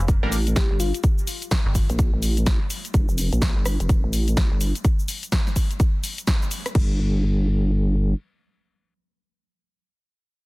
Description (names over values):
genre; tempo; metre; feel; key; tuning
bass house; 126 BPM; 4/4; swing 62% on 16ths; G minor; A4 = 440 Hz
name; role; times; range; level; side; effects
metallic FM bass; bass; 0.0-1.9 s; F1 to G1; -24 LUFS; equal; tube saturation, sidechain pumping
electronic kick drum; drums; 0.1-6.9 s; none; -21 LUFS; equal; none
house drum kit; drums; 0.1-6.9 s; cabasa, crash cymbal, hi-hat, rim click, snare drum; -28 LUFS; left 1 dB; none
vowel-sweep wobble bass; bass; 0.2-8.1 s; F1 to Bb1; -21 LUFS; equal; chorus, tube saturation, sidechain pumping
bell-like FM electric piano; melody; 0.6-1.0 s; F4 to G4; -32 LUFS; left 5 dB; chorus, tremolo, dub echo
room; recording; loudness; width
little or no reverb; dense, heavily limited modern master; -19 LUFS; side -23 dB against mid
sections
0.0-6.8 A section; 6.8-10.5 B section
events
drop 0.0-6.8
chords
0.0 Gm; 6.8 N.C.